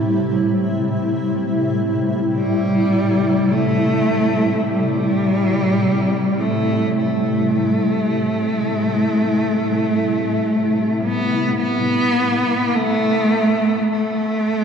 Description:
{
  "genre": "dark ambient drone",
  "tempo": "52 BPM",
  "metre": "4/4",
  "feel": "straight",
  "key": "A minor",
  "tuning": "A4 = 439 Hz",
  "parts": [
    { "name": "granular cloud pad", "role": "sustained chords", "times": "0.0-11.6 s", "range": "A2 to E4", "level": "-20 LUFS", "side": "equal", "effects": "built-in reverb" },
    { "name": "warm cello", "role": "melody", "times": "2.4-14.6 s", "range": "G3 to B3", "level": "-18 LUFS", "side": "equal", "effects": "tape echo" }
  ],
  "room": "wet cathedral reverb, RT60 5.8 s",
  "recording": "cassette tape",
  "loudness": "-16 LUFS",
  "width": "side -7 dB against mid",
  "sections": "0.0-11.6 A section; 11.6-14.6 B section",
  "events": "none",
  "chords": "0.0 Am; 11.6 N.C."
}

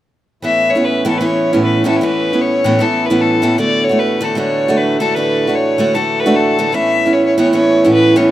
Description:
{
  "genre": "celtic folk",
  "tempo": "152 BPM",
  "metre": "4/4",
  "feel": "swing 61% on 8ths",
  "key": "A major",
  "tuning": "A4 = 441 Hz",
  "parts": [
    { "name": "rich fiddle", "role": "melody", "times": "0.4-8.3 s", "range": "A4 to E5", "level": "-16 LUFS", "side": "left 1 dB", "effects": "none" },
    { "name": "picked steel-string acoustic guitar", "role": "accompaniment", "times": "0.4-8.3 s", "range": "A2 to F#4", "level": "-14 LUFS", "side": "right 1 dB", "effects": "none" },
    { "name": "pedal harmonium", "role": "drone", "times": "0.4-8.3 s", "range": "A2 to E3", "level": "-22 LUFS", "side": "left 2 dB", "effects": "none" }
  ],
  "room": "light reverb, small room ambience",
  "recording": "rough home demo mix",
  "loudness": "-11 LUFS",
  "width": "side -13 dB against mid",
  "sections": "0.4-8.3 A section",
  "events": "none",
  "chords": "0.4 Aadd9; 3.6 D; 6.7 Aadd9"
}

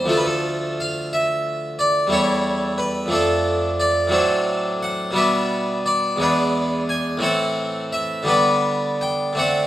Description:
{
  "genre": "classical, baroque-style suite movement for harpsichord",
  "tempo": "59 BPM (dotted quarters)",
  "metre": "6/8",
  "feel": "uneven beats, rubato",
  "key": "G major from 4.1 s",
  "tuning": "A4 = 439 Hz",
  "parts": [
    { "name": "harpsichord", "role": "solo", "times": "0.0-9.7 s", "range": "D2 to G#5", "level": "-18 LUFS", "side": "equal", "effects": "none" }
  ],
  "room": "moderate stone room reverb, RT60 1.2 s",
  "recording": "none",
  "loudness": "-18 LUFS",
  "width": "side -13 dB against mid",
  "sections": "0.0-9.7 A section",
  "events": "none",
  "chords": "0.1 Dm; 2.1 A7/E; 3.1 Dm/F; 4.1 D7/A; 5.2 G/B; 6.2 E7; 7.2 Am; 8.3 G/D"
}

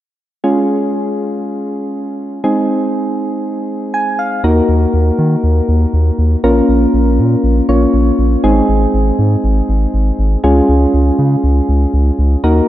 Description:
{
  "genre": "synth-pop",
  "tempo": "120 BPM",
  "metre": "4/4",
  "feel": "straight",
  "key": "Db major",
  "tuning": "A4 = 442 Hz",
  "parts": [
    { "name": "soft electric-piano-like synth keys", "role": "accompaniment", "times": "0.4-12.7 s", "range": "Ab3 to Ab5", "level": "-14 LUFS", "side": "equal", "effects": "chorus" },
    { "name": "round analog bass", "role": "bass", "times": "4.4-12.6 s", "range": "Ab1 to Eb3", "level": "-12 LUFS", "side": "equal", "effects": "none" }
  ],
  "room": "moderate lush hall reverb, RT60 2.1 s",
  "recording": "dark, warm production",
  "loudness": "-11 LUFS",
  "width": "side -13 dB against mid",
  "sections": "0.4-4.4 A section; 4.4-12.7 B section",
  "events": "synth keys fill 3.7-4.4",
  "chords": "0.4 Db; 2.4 Ab; 4.4 Ebm; 6.4 Bbm; 8.4 Ab; 10.4 Db"
}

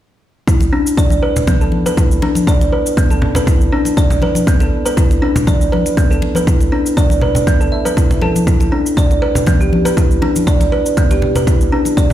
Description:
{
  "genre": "afro house",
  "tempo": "120 BPM",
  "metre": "4/4",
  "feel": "swing 53% on 16ths",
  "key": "E minor",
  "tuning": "A4 = 440 Hz",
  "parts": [
    { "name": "kalimba", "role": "arpeggios", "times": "0.5-12.1 s", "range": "B3 to E5", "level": "-16 LUFS", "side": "right 1 dB", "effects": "sidechain pumping, low-pass filter, dub echo" },
    { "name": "cabasa", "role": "drums", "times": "0.5-12.1 s", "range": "none", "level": "-27 LUFS", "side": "equal", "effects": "overdrive, small room ambience" },
    { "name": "electronic kick drum", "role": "drums", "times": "0.5-12.1 s", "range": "none", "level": "-12 LUFS", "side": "equal", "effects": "overdrive, small room ambience" },
    { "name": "congas", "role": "percussion", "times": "0.6-12.1 s", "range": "none", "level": "-19 LUFS", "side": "left 1 dB", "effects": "none" }
  ],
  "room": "light reverb, small room ambience",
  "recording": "played on a big sound system in a bare room, large studio reverb",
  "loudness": "-11 LUFS",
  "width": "side -12 dB against mid",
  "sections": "0.5-12.1 A section",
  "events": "none",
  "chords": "none"
}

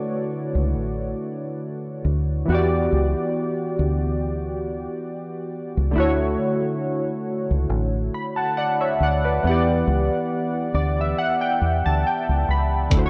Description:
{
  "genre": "lo-fi hip hop",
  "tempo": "69 BPM",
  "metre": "4/4",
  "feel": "swing 56% on 16ths",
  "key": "unclear",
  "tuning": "A4 = 440 Hz",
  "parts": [
    { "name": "warm analog keys", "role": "accompaniment", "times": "0.0-13.1 s", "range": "D3 to B5", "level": "-25 LUFS", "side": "equal", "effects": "chorus, low-pass filter" },
    { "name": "deep dub fingered electric bass", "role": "bass", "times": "0.5-13.1 s", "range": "A1 to E2", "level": "-24 LUFS", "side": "equal", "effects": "none" },
    { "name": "dusty soul sampler-style drum kit", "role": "drums", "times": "12.9-13.1 s", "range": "hi-hat, kick drum", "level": "-21 LUFS", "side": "equal", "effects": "none" }
  ],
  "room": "light reverb, digital ambience",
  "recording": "worn, warbling old tape, cassette tape, warbly pitch drift",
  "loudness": "-23 LUFS",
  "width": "mono",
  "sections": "0.0-13.1 A section",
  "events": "synth keys fill 10.3-12.9",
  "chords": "0.0 Dmaj9; 2.5 Em9; 6.0 Dmaj9; 9.4 Em9"
}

